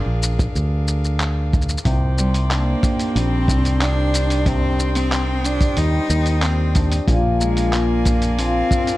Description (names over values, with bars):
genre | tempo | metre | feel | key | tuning
folktronica | 92 BPM | 4/4 | straight | C minor | A4 = 438 Hz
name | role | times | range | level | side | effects
rich string quartet | sustained chords | 0.0-9.0 s | Eb3 to Eb6 | -30 LUFS | left 1 dB | none
fingered electric bass | bass | 0.1-8.6 s | Bb1 to Eb2 | -19 LUFS | equal | none
lo-fi sampler-style drum kit | drums | 0.2-9.0 s | handclaps, hi-hat, shaker | -27 LUFS | equal | none
kick drum | drums | 0.4-8.8 s | none | -21 LUFS | equal | none
cimbalom | arpeggios | 1.9-9.0 s | Bb2 to Ab4 | -24 LUFS | left 2 dB | tape echo
rich cello | melody | 2.2-9.0 s | G3 to Eb4 | -23 LUFS | equal | tape echo
room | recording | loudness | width
light reverb, small room ambience | none | -16 LUFS | side -17 dB against mid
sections
0.0-9.0 A section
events
none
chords
0.0 Bb7; 1.9 Cmadd9; 7.1 Bb7